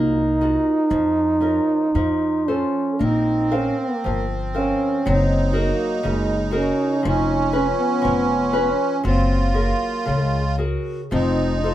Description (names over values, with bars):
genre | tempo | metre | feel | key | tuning
fado-style ballad | 59 BPM | 2/4 | rubato | Bb minor | A4 = 440 Hz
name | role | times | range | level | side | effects
breathy trombone | melody | 0.0-11.7 s | Ab3 to F4 | -21 LUFS | right 1 dB | none
nylon-string guitar | accompaniment | 0.0-11.7 s | Db3 to F5 | -25 LUFS | left 2 dB | none
upright bass | bass | 0.0-11.7 s | F1 to F2 | -23 LUFS | left 1 dB | none
accordion | second line | 3.0-11.7 s | C4 to F4 | -25 LUFS | right 4 dB | light tremolo tuning
room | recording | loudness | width
moderate studio reverb, RT60 0.5 s | band playing live in one room | -18 LUFS | side -13 dB against mid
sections
0.0-11.7 A section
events
none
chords
0.0 Ebmadd9; 0.9 Bbm/F; 1.9 F; 3.0 Bbsus2; 5.1 Gbadd9; 7.0 Db7/F; 9.1 Gbadd9; 11.1 F